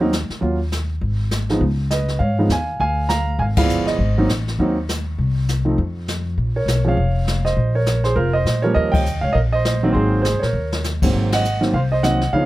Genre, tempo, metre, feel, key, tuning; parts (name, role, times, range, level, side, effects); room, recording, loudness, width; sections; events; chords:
jazz piano trio; 201 BPM; 4/4; swing 60% on 8ths; Ab mixolydian; A4 = 440 Hz
warm grand piano; melody; 0.0-12.5 s; Ab2 to Bb5; -20 LUFS; right 2 dB
upright bass; bass; 0.0-12.5 s; F1 to Bb2; -20 LUFS; equal
jazz brush drum kit; drums; 0.1-12.5 s; brushed snare drum, crash cymbal, hi-hat, kick drum, ride cymbal, snare drum; -25 LUFS; left 2 dB
little or no reverb; close, detailed microphones; -17 LUFS; side -16 dB against mid
0.0-11.1 A section; 11.1-12.5 A section
band accent 3.5, 8.9, 11.3; drum fill 10.5
0.4 Ebm7; 1.0 Ab5; 1.6 Db7; 2.8 Ddim7; 4.0 Ab7; 5.2 N.C.; 6.4 Bbm; 8.8 Eb7; 9.9 Ab7; 10.5 Eb7; 11.1 Ab7